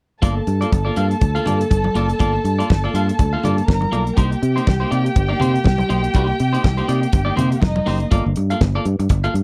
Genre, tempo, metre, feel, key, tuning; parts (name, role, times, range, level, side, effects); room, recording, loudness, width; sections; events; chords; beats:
disco; 122 BPM; 4/4; swing 56% on 16ths; G minor; A4 = 436 Hz
dark studio violin section; second line; 0.2-8.1 s; Eb4 to Bb5; -26 LUFS; equal
clean electric guitar; accompaniment; 0.2-9.4 s; Bb3 to F5; -26 LUFS; equal
fingered electric bass; bass; 0.2-9.4 s; F1 to C3; -22 LUFS; equal
damped 70s drum kit; drums; 0.2-9.4 s; hi-hat, kick drum, snare drum; -20 LUFS; equal
congas; percussion; 0.2-9.2 s; -28 LUFS; equal
little or no reverb; dry, close 1970s-style studio recording; -18 LUFS; mono
0.2-8.1 A section; 8.1-9.4 B section
0.2 Gm9; 4.2 Cm7; 8.1 Gm9
| 0.23 0.72 1.22 1.71 | 2.20 2.70 3.19 3.69 | 4.18 4.67 5.17 5.66 | 6.15 6.64 7.14 7.63 | 8.12 8.61 9.10